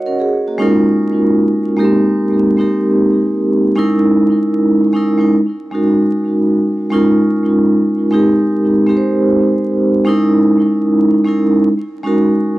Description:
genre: hip hop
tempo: 76 BPM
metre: 4/4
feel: swing 64% on 16ths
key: Ab major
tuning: A4 = 439 Hz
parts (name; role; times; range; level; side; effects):
- vibraphone with medium mallets; solo; 0.0-12.6 s; Ab3 to Gb5; -11 LUFS; right 1 dB; analog delay
room: wet small room reverb, RT60 0.5 s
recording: worn, warbling old tape, cassette tape, vinyl crackle, warbly pitch drift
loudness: -11 LUFS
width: side -17 dB against mid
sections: 0.0-10.1 A section; 10.1-12.6 B section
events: none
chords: 0.0 N.C.; 0.6 Eb9sus4; 1.8 Abmaj9; 3.8 Dbm6; 5.3 Gb69; 6.9 Eb9sus4; 8.1 Abmaj9; 10.1 Dbm6; 11.7 Gb69

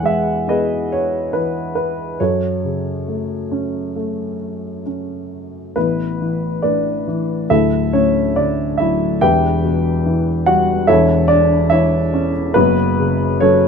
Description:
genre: classical, lyrical solo piano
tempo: 64-72 BPM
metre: 4/4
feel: rubato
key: F# minor, A major from 5.8 s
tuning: A4 = 437 Hz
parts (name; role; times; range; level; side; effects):
- dark grand piano; solo; 0.0-13.7 s; D1 to G#5; -15 LUFS; equal; none
room: light reverb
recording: none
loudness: -15 LUFS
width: side -6 dB against mid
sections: 0.0-5.8 A section; 5.8-13.7 B section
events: none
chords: 0.0 E; 2.2 F#m; 5.8 Asus2; 7.5 Dadd9; 9.2 Em; 10.9 A/E; 12.6 F#m

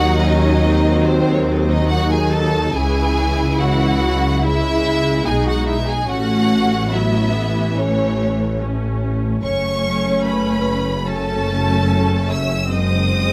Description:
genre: classical, slow romantic movement for string orchestra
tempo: 72 BPM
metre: 4/4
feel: rubato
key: C# minor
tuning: A4 = 438 Hz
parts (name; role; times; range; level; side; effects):
- rich symphonic violin section; melody; 0.0-13.3 s; A4 to E6; -26 LUFS; equal; none
- rich studio violin section; second line; 0.0-13.3 s; B#3 to E5; -26 LUFS; equal; none
- rich symphonic viola section; accompaniment; 0.0-13.3 s; E3 to E4; -24 LUFS; equal; none
- clear symphonic double bass section; bass; 0.0-13.3 s; F#1 to D#2; -22 LUFS; equal; none
- dark studio cello section; bass; 0.0-13.3 s; F#2 to D#3; -25 LUFS; equal; none
room: little or no reverb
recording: close, detailed microphones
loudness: -18 LUFS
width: mono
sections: 0.0-13.3 A section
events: none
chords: 0.0 D#dim7; 2.7 C#m; 6.1 A; 9.4 F#m; 12.7 G#7/F#

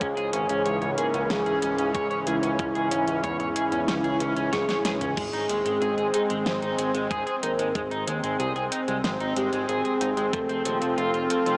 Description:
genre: synthwave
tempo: 93 BPM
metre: 4/4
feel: straight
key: Ab major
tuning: A4 = 440 Hz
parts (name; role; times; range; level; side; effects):
- soft octave-layered synth lead; melody; 0.0-11.6 s; Fb4 to C5; -27 LUFS; equal; chorus, phaser, tape echo
- warm analog pad; sustained chords; 0.0-11.6 s; Ab2 to F4; -28 LUFS; equal; chorus, sidechain pumping
- electric guitar at the edge of break-up; riff; 0.0-11.5 s; F3 to Db5; -30 LUFS; equal; analog chorus, low-pass filter, tape echo
- fat analog bass; bass; 0.0-11.6 s; Eb1 to Fb2; -33 LUFS; equal; none
- electronic kick drum; drums; 0.0-10.5 s; none; -33 LUFS; equal; none
- pop drum kit; drums; 0.0-11.6 s; crash cymbal, hi-hat, snare drum, toms; -33 LUFS; equal; overdrive
room: wet huge ambient reverb, RT60 8.8 s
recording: dreamy mix soaked in reverb, small speaker sound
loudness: -23 LUFS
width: side -36 dB against mid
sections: 0.0-11.6 A section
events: drum fill 4.5-5.2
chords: 0.0 Dbm; 5.2 Ab; 10.3 F7

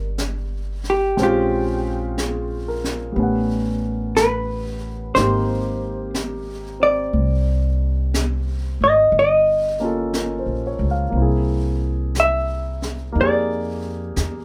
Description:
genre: jazz ballad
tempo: 60 BPM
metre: 4/4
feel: swing 68% on 8ths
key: C minor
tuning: A4 = 440 Hz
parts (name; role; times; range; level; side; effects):
- vintage hollow-body jazz guitar; melody; 0.0-14.2 s; G4 to E5; -21 LUFS; equal; none
- warm concert grand piano; accompaniment; 0.0-14.4 s; G3 to F#5; -28 LUFS; equal; none
- upright bass; bass; 0.0-14.4 s; G1 to F2; -26 LUFS; equal; none
- jazz brush drum kit; drums; 0.2-14.4 s; brushed snare drum, hi-hat, snare drum; -32 LUFS; equal; none
room: light reverb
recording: none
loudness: -21 LUFS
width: mono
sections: 0.0-14.4 A section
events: none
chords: 0.0 Cm7 (rootless); 1.2 Bbm9; 3.2 A13; 5.1 Abmaj9; 9.1 Gm7b5; 11.1 C7alt; 13.2 Fm11

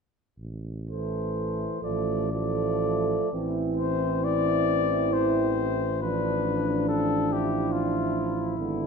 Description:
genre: classical, hymn-like piece for brass band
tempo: 38-48 BPM (dotted quarters)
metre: 6/8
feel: rubato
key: A minor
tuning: A4 = 439 Hz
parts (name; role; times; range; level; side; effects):
- dark tuba; bass; 0.4-8.9 s; G#1 to A1; -32 LUFS; right 1 dB; none
- warm cornet; melody; 0.9-8.6 s; F4 to D5; -29 LUFS; left 10 dB; none
- mellow French horn section; second line; 0.9-8.9 s; B3 to A4; -30 LUFS; right 7 dB; none
- mellow euphonium; accompaniment; 0.9-8.9 s; D3 to F3; -32 LUFS; right 4 dB; none
- mellow trombone section; accompaniment; 0.9-8.9 s; A3 to E4; -33 LUFS; left 2 dB; none
room: moderate scoring stage reverb, RT60 1.7 s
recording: minimal, uncompressed stereo recording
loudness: -24 LUFS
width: side -5 dB against mid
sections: 0.4-3.3 A section; 3.3-8.9 B section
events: none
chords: 0.4 Am; 1.8 Dm/A; 3.3 Am; 6.0 Bm7b5/A

